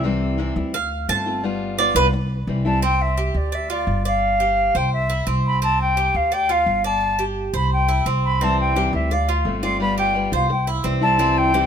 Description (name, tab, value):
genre	latin, Cuban son and guajira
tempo	172 BPM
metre	4/4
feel	straight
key	C major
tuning	A4 = 439 Hz
part	picked steel-string acoustic guitar	accompaniment	0.0-2.8, 8.4-11.7 s	C3 to F4	-24 LUFS	left 3 dB	none
part	upright bass	bass	0.0-11.7 s	G1 to D2	-23 LUFS	equal	none
part	Cuban tres	arpeggios	0.7-11.7 s	C4 to A5	-24 LUFS	right 3 dB	none
part	silver concert flute	melody	2.7-11.7 s	D5 to C6	-20 LUFS	left 1 dB	none
room	light reverb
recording	minimal, uncompressed stereo recording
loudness	-18 LUFS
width	side -8 dB against mid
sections	0.0-2.8 A section; 2.8-11.7 B section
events	Cuban tres solo 0.0-2.8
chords	0.0 C; 0.7 Dm7; 1.4 G7; 2.1 C; 3.5 Dm; 4.2 G5; 4.9 C; 6.3 Dm; 7.0 G5; 7.7 C; 9.1 Dm7; 9.8 G7; 10.5 C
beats	| 0.04 0.39 0.74 1.09 | 1.44 1.78 2.13 2.48 | 2.83 3.18 3.52 3.87 | 4.22 4.57 4.92 5.27 | 5.62 5.97 6.32 6.67 | 7.01 7.36 7.71 8.06 | 8.41 8.76 9.11 9.46 | 9.80 10.15 10.50 10.85 | 11.20 11.54